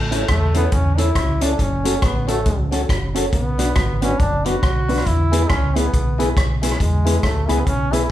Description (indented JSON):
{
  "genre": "ska",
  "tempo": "138 BPM",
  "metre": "4/4",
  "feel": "swing 60% on 8ths",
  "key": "unclear",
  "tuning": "A4 = 440 Hz",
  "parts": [
    { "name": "bright trombone", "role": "melody", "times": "0.0-8.1 s", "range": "G#3 to F#4", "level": "-24 LUFS", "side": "equal", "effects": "none" },
    { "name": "fingered electric bass", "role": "bass", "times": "0.0-8.0 s", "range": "F#1 to E2", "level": "-21 LUFS", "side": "equal", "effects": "none" },
    { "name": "mellow electric guitar", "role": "accompaniment", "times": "0.1-8.0 s", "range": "B3 to C#5", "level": "-26 LUFS", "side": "right 3 dB", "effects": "dub echo" },
    { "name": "mellow tonewheel organ", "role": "stabs", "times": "0.1-8.0 s", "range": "C#4 to B4", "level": "-26 LUFS", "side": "left 4 dB", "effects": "slow rotary speaker" },
    { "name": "vintage drum kit", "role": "drums", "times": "0.1-8.0 s", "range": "hi-hat, kick drum, rim click", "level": "-21 LUFS", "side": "equal", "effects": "none" }
  ],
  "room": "wet large studio reverb, RT60 0.8 s",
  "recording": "band playing live in one room",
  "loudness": "-16 LUFS",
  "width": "side -13 dB against mid",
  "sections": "0.0-8.1 A section",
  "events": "none",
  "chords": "0.0 A; 1.6 F#m; 3.3 Bm; 5.1 E"
}